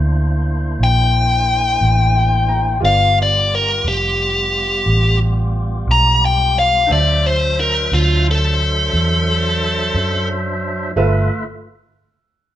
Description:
slow blues; 59 BPM (dotted quarters); 12/8; straight; G mixolydian; A4 = 441 Hz
clear upright piano; accompaniment; 0.0-11.3 s; Bb3 to Bb5; -25 LUFS; right 3 dB
tonewheel organ; sustained chords; 0.0-11.4 s; F#3 to E5; -26 LUFS; right 1 dB; overdrive, fast rotary speaker
vintage muted fingered electric bass; bass; 0.0-11.3 s; F1 to F#2; -17 LUFS; right 1 dB
biting lead guitar; melody; 0.8-10.3 s; F4 to Bb5; -16 LUFS; left 2 dB; overdrive
moderate large studio reverb, RT60 0.9 s; band playing live in one room; -14 LUFS; side -12 dB against mid
0.0-11.0 A section; 11.0-12.6 B section
lead electric guitar solo 0.0-11.0; upright piano fill 1.8-2.8
0.0 C9; 2.8 G9; 6.9 D9; 11.0 G13
0.79 1.81 | 2.83 3.85 4.86 5.88 | 6.90 7.92 8.94 9.95 | 10.97

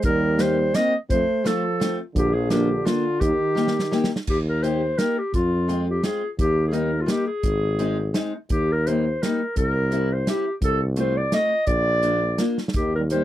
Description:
alpine folk, alpine dance band; 170 BPM; 3/4; swing 54% on 8ths; Eb major; A4 = 442 Hz
mellow clarinet; melody; 0.0-13.2 s; F4 to Eb5; -24 LUFS; left 1 dB
warm euphonium; second line; 0.0-4.1, 12.8-13.2 s; D3 to C4; -28 LUFS; right 5 dB
warm tuba; bass; 0.0-13.2 s; Ab1 to F2; -24 LUFS; equal
natural country drum kit; drums; 0.0-13.2 s; crash cymbal, hi-hat, kick drum, snare drum; -26 LUFS; right 1 dB
fingerpicked steel-string acoustic guitar; accompaniment; 0.4-13.2 s; G3 to G4; -26 LUFS; left 2 dB
little or no reverb; dry, close 1970s-style studio recording; -20 LUFS; side -13 dB against mid
0.0-4.3 A section; 4.3-13.2 B section
drum fill 3.6-4.3, 12.6
0.0 Eb6; 1.1 F; 2.2 Bb; 3.2 Eb; 5.3 Fm; 6.4 Eb; 7.4 Ab; 8.5 Eb; 9.6 C7; 10.6 F7/C; 11.7 Bb; 12.7 Eb
| 0.03 0.39 0.75 | 1.10 1.45 1.81 | 2.16 2.51 2.86 | 3.21 3.56 3.92 | 4.28 4.64 4.99 | 5.34 5.70 6.05 | 6.39 6.74 7.09 | 7.44 7.79 8.15 | 8.50 8.86 9.22 | 9.57 9.91 10.26 | 10.61 10.96 11.32 | 11.67 12.03 12.38 | 12.74 13.10

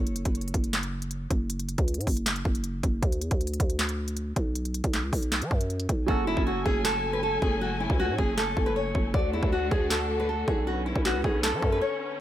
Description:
hip hop, trap; 157 BPM; 4/4; half-time; A4 = 440 Hz
growling 808-style bass; bass; 0.0-11.8 s; F#1 to F#3; -30 LUFS; equal
trap drum kit; drums; 0.1-11.7 s; handclaps, hi-hat, kick drum, snare drum; -28 LUFS; equal
nylon-string guitar; melody; 6.1-12.2 s; E4 to D5; -28 LUFS; left 1 dB; ping-pong delay
felt-muted upright piano; accompaniment; 6.1-9.2 s; F#3 to A4; -34 LUFS; right 6 dB
dark symphonic string section; sustained chords; 6.1-12.2 s; D3 to G#5; -34 LUFS; left 1 dB
small room ambience; -25 LUFS; side -12 dB against mid
0.0-12.2 A section
break 0.0-6.1, 11.8-12.2; hi-hats muted 6.1-12.2
0.0 N.C.; 3.0 Bm; 4.6 B5; 6.1 F#madd9; 9.1 D; 10.7 Bmadd9
0.35 0.73 1.11 | 1.50 1.88 2.26 2.64 | 3.03 3.41 3.79 4.17 | 4.55 4.94 5.32 5.70 | 6.08 6.46 6.85 7.23 | 7.61 7.99 8.38 8.76 | 9.14 9.52 9.90 10.29 | 10.67 11.05 11.43 11.81 | 12.20

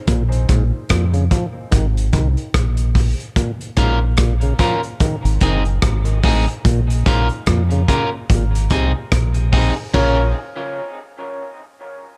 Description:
dub reggae; 73 BPM; 4/4; swing 58% on 16ths; Bb minor; A4 = 441 Hz
mellow clav; arpeggios; 0.1-10.2 s; Ab2 to F3; -29 LUFS; equal; dub echo
deep dub fingered electric bass; bass; 0.1-10.3 s; Gb1 to F2; -19 LUFS; equal
crunchy breakbeat drum kit; drums; 0.1-10.2 s; crash cymbal, hi-hat, kick drum, rim click; -22 LUFS; equal
electric guitar at the edge of break-up; accompaniment; 3.8-10.2 s; C4 to Bb4; -25 LUFS; equal; dub echo
bright concert grand piano; stabs; 9.9-10.3 s; Db4 to Db5; -29 LUFS; equal; dub echo
small room reverb; -17 LUFS; mono
0.0-9.9 A section; 9.9-12.2 B section
break 0.0-9.9
0.1 Bb5; 1.7 Ab; 3.4 Bbm; 5.0 Ab; 6.7 Bbm; 8.3 Ab; 9.9 Bbm
| 0.08 0.90 1.72 2.55 | 3.37 4.19 5.01 5.83 | 6.66 7.48 8.30 9.12 | 9.94

